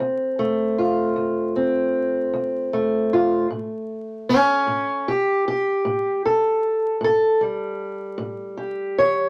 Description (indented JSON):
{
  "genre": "acoustic country blues, solo or duo",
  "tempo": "51 BPM (dotted quarters)",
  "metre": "12/8",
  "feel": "straight",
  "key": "D minor",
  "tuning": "A4 = 440 Hz",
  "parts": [
    { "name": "fingerpicked steel-string acoustic guitar", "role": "solo", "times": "0.0-9.3 s", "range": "D2 to C#5", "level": "-22 LUFS", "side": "equal", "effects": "none" }
  ],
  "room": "moderate small room reverb, RT60 0.5 s",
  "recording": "vinyl crackle",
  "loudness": "-22 LUFS",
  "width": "mono",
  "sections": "0.0-9.3 A section",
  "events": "steel-string acoustic guitar solo 0.0-9.3",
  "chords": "0.0 Dm7; 3.5 A7"
}